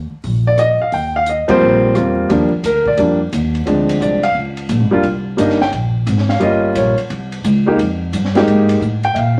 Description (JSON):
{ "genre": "jazz piano trio", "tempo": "175 BPM", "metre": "4/4", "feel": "swing 64% on 8ths", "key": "Eb major", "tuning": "A4 = 439 Hz", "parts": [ { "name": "upright bass", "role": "bass", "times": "0.0-9.4 s", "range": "F1 to Bb2", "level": "-21 LUFS", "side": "equal", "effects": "none" }, { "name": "compact cocktail drum kit", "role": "drums", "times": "0.2-9.4 s", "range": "hi-hat, kick drum, ride cymbal, rim click, snare drum", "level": "-29 LUFS", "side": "equal", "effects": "none" }, { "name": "warm baby grand piano", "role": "melody", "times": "0.5-9.4 s", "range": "F3 to G5", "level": "-16 LUFS", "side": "equal", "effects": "none" } ], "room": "wet studio reverb, RT60 0.8 s", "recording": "vinyl crackle, lossy compression artefacts", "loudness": "-15 LUFS", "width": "mono", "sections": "0.0-2.3 A section; 2.3-9.4 B section", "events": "band accent 1.4", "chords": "0.0 Eb69; 2.3 Ebmaj9; 3.7 Dm7b5; 4.3 Db6; 5.0 Cm7; 6.4 Gm7b5; 7.1 C5; 7.8 Fm11" }